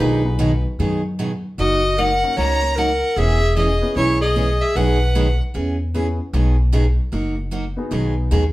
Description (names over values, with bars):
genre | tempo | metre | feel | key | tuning
country, western swing | 152 BPM | 4/4 | swing 64% on 8ths | B major | A4 = 440 Hz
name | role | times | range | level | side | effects
clear fiddle | melody | 0.0-5.4 s | B4 to A#5 | -22 LUFS | left 1 dB | none
clear clarinet | second line | 0.0-5.4 s | D#4 to C#5 | -22 LUFS | right 1 dB | none
picked steel-string acoustic guitar | accompaniment | 0.0-8.4 s | B2 to G#4 | -24 LUFS | right 2 dB | none
warm upright piano | accompaniment | 0.0-8.3 s | A#3 to G#4 | -28 LUFS | left 2 dB | none
upright bass | bass | 0.0-8.5 s | E1 to F#2 | -19 LUFS | equal | none
room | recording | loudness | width
moderate studio reverb, RT60 0.8 s | band playing live in one room | -16 LUFS | side -17 dB against mid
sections
0.0-7.9 A section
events
none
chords
0.0 B6; 1.6 F#6; 3.2 E6; 4.8 B6; 5.5 E6; 6.3 B6; 7.1 F#6; 7.9 B6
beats
| 0.00 0.40 0.79 1.19 | 1.59 1.98 2.38 2.77 | 3.17 3.56 3.96 4.36 | 4.75 5.15 5.54 5.94 | 6.34 6.73 7.13 7.53 | 7.92 8.32